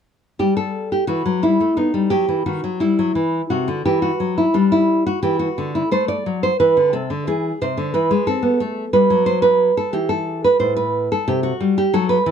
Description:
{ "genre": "classical, baroque-style dance for nylon-string guitar", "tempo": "89 BPM", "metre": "4/4", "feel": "rubato", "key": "E minor", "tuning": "A4 = 439 Hz", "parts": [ { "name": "nylon-string guitar", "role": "solo", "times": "0.4-12.3 s", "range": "A2 to D5", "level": "-16 LUFS", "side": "equal", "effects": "none" } ], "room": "light reverb", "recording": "dark, warm production", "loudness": "-16 LUFS", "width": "side -8 dB against mid", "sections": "0.4-12.3 A section", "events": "none", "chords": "0.4 Em/G; 1.8 B (rootless); 3.2 Em; 5.9 Am; 7.3 E; 8.6 A5; 11.3 Cmaj7(no3)", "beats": "| 0.39 1.08 1.78 2.47 | 3.16 3.85 4.55 5.23 | 5.91 6.59 7.26 7.93 | 8.59 9.27 9.94 10.61 | 11.28 11.94" }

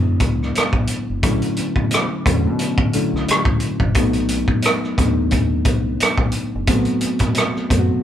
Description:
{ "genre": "R&B, neo-soul", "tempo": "88 BPM", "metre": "4/4", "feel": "swing 54% on 16ths", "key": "B dorian", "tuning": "A4 = 438 Hz", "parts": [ { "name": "bright reed electric piano", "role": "accompaniment", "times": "0.0-8.0 s", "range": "C3 to F#4", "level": "-21 LUFS", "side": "left 1 dB", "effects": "overdrive" }, { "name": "deep dub fingered electric bass", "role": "bass", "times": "0.0-8.0 s", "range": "F#1 to B2", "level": "-24 LUFS", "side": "equal", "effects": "none" }, { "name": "crunchy breakbeat drum kit", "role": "drums", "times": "0.2-7.9 s", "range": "hi-hat, kick drum, rim click", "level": "-19 LUFS", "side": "equal", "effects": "none" } ], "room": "light reverb", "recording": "band playing live in one room", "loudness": "-16 LUFS", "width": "side -10 dB against mid", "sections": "0.0-8.0 A section", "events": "none", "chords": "0.0 E9; 1.2 Bm11; 4.0 B7b9", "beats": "0.55 | 1.23 1.91 2.59 3.27 | 3.96 4.64 5.32 6.00 | 6.68 7.36" }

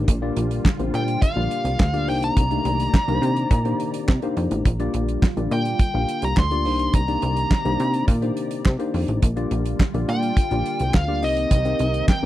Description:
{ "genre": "early-eighties boogie funk", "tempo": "105 BPM", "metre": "4/4", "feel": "straight", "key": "unclear", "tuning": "A4 = 440 Hz", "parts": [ { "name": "tine electric piano", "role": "accompaniment", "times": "0.0-12.3 s", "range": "A3 to F5", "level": "-26 LUFS", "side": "left 4 dB", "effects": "analog chorus" }, { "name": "warm analog pad", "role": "sustained chords", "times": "0.0-12.3 s", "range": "Bb2 to D5", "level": "-33 LUFS", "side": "right 2 dB", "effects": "chorus" }, { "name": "plucky analog bass", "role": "bass", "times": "0.0-12.3 s", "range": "A1 to C3", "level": "-24 LUFS", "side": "equal", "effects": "none" }, { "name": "damped 70s drum kit", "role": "drums", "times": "0.1-12.2 s", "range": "handclaps, hi-hat, kick drum, snare drum", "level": "-19 LUFS", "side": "equal", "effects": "none" }, { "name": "smooth overdriven lead guitar", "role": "melody", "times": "1.0-12.3 s", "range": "Eb5 to C6", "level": "-26 LUFS", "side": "equal", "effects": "none" } ], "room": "little or no reverb", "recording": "dry, close 1970s-style studio recording", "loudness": "-19 LUFS", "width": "side -14 dB against mid", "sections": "0.0-12.3 A section", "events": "none", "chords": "0.1 Bb6; 2.1 Cm9; 4.7 Bb6; 6.7 Cm9; 9.2 Bb6; 11.2 Cm7", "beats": "| 0.08 0.65 1.22 1.79 | 2.37 2.94 3.51 4.08 | 4.65 5.22 5.79 6.37 | 6.94 7.51 8.08 8.65 | 9.22 9.79 10.37 10.94 | 11.51 12.08" }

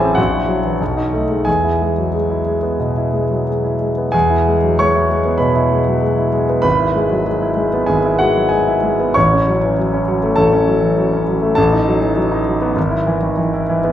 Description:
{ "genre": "classical, virtuoso piano study", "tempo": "88-101 BPM", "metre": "4/4", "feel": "rubato", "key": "E major", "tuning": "A4 = 442 Hz", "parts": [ { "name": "warm concert grand piano", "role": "solo", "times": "0.0-13.9 s", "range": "G#1 to C#6", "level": "-14 LUFS", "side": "equal", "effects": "none" } ], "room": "wet large studio reverb, RT60 1.3 s", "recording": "heard from further back in the room", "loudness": "-14 LUFS", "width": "side -11 dB against mid", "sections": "0.0-4.1 A section; 4.1-13.9 A section", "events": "none", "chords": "0.2 F#7/A#; 0.8 B7; 1.5 E; 6.6 E/G#; 9.1 F#m/A; 11.6 B7/A; 12.8 E/G#", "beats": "0.17 0.80 | 1.46 2.14 2.81 3.48 | 4.14 4.79 5.41 6.02 | 6.64 7.26 7.88 8.50 | 9.15 9.76 10.37 10.97 | 11.57 12.17 12.76 13.37" }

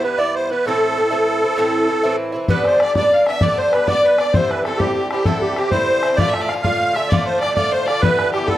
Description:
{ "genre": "celtic folk, Celtic slide", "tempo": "130 BPM (dotted quarters)", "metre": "12/8", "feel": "straight", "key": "unclear", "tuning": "A4 = 440 Hz", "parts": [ { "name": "musette accordion", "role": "melody", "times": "0.0-8.6 s", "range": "G4 to F5", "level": "-18 LUFS", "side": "right 1 dB", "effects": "none" }, { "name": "Irish bouzouki", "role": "accompaniment", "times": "0.0-8.6 s", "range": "G2 to F4", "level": "-20 LUFS", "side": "equal", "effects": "none" }, { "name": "clear fiddle", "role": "second line", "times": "2.5-8.6 s", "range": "G4 to F5", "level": "-25 LUFS", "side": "left 5 dB", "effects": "none" }, { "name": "bodhran", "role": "percussion", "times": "2.5-8.6 s", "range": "none", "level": "-21 LUFS", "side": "left 2 dB", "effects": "none" } ], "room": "light reverb, studio reverb", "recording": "dry, close 1970s-style studio recording", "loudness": "-15 LUFS", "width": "side -14 dB against mid", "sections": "0.0-2.5 A section; 2.5-8.6 A section", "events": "none", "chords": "0.0 Em; 0.6 Am; 2.5 G; 4.3 Cadd9; 6.2 Dm; 8.0 Em7", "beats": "0.18 | 0.64 1.10 1.56 2.03 | 2.49 2.95 3.41 3.87 | 4.33 4.79 5.25 5.71 | 6.17 6.63 7.09 7.55 | 8.02 8.48" }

